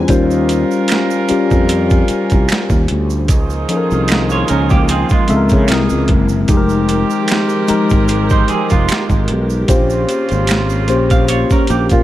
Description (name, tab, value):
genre	R&B, neo-soul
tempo	75 BPM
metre	4/4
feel	swing 53% on 16ths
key	Bb dorian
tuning	A4 = 440 Hz
part	mellow tine electric piano	accompaniment	0.0-12.0 s	F3 to Bb5	-16 LUFS	left 4 dB	phaser
part	warm studio string section	sustained chords	0.0-12.0 s	C3 to Bb4	-24 LUFS	right 3 dB	none
part	sustaining fretless electric bass	bass	0.0-12.0 s	F1 to Db3	-17 LUFS	equal	lush chorus
part	warm horn section	stabs	0.1-11.7 s	Db3 to Bb4	-23 LUFS	right 4 dB	none
part	boom bap sampler-style drum kit	drums	0.1-12.0 s	finger snaps, hi-hat, kick drum, snare drum	-15 LUFS	right 1 dB	overdrive
part	tube shaker and finger snaps	percussion	0.1-12.0 s	none	-28 LUFS	right 9 dB	none
part	semi-hollow electric guitar	second line	4.3-12.0 s	Ab3 to F5	-19 LUFS	right 5 dB	none
room	small room ambience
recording	none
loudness	-11 LUFS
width	side -14 dB against mid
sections	0.0-12.0 A section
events	none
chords	0.1 Eb13; 3.3 Db69; 5.7 C7alt; 6.5 Fm11; 9.7 Bbm69